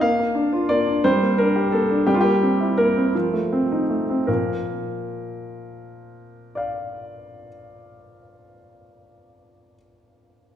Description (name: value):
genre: classical-period piano sonatina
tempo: 51-59 BPM (dotted quarters)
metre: 6/8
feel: rubato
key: Bb major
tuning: A4 = 441 Hz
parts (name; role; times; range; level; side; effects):
- clear concert grand piano; solo; 0.0-10.6 s; Bb2 to F5; -19 LUFS; equal; none
room: wet recital hall reverb, RT60 1.5 s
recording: recorded in a church or concert hall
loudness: -18 LUFS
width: side -10 dB against mid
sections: 0.0-4.3 A section; 4.3-8.8 B section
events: slowing down 0.0-4.3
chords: 0.0 Bb; 1.0 Gm; 2.1 C7/G; 3.1 F7; 4.3 Bb